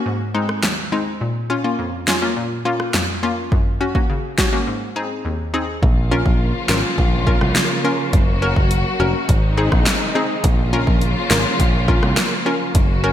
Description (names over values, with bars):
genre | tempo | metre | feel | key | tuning
dancehall | 104 BPM | 4/4 | straight | Bb minor | A4 = 443 Hz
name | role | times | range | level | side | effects
analog pluck | accompaniment | 0.0-13.1 s | Eb2 to Bb4 | -22 LUFS | left 1 dB | chorus
deep house drum kit | drums | 0.5-12.9 s | handclaps, hi-hat, kick drum, rim click, snare drum | -18 LUFS | equal | gated reverb
warm studio string section | sustained chords | 5.8-13.1 s | C3 to Gb4 | -22 LUFS | left 1 dB | sidechain pumping
picked electric bass | bass | 5.8-13.1 s | F1 to C2 | -20 LUFS | equal | none
room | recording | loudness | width
moderate lush hall reverb, RT60 1.7 s | bright 1980s-style digital production | -16 LUFS | side -11 dB against mid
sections
0.0-5.8 A section; 5.8-13.1 B section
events
break 4.7-5.8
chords
0.1 Ab; 1.2 Bbm; 3.5 Gb; 4.7 Ab; 5.8 Bbm; 8.1 Gb; 9.3 Ab; 10.4 Bbm